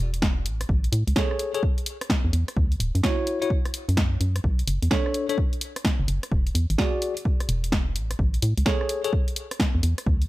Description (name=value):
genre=UK garage, two-step garage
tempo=128 BPM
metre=4/4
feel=swing 64% on 16ths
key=unclear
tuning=A4 = 438 Hz
part: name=organ-like FM bass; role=bass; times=0.0-10.3 s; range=D1 to A2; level=-24 LUFS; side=equal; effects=none
part: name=punchy analog drum machine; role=drums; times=0.1-10.3 s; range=hi-hat, rim click, snare drum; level=-28 LUFS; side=equal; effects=none
part: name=electronic kick drum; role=drums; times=0.2-10.2 s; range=none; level=-25 LUFS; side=equal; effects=none
part: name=bell-like tine electric piano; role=stabs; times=1.2-9.1 s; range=D4 to D5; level=-28 LUFS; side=moving between left 5 dB and right 5 dB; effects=auto-pan, dub echo
room=digital ambience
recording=none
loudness=-22 LUFS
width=side -17 dB against mid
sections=0.0-10.3 A section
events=none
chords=0.5 Amaj7; 2.6 Dmaj9; 4.4 Bm9; 6.3 E9; 8.0 Amaj7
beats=0.22 | 0.69 1.16 1.63 2.10 | 2.57 3.03 3.50 3.97 | 4.44 4.91 5.38 5.85 | 6.32 6.78 7.25 7.72 | 8.19 8.66 9.13 9.60 | 10.07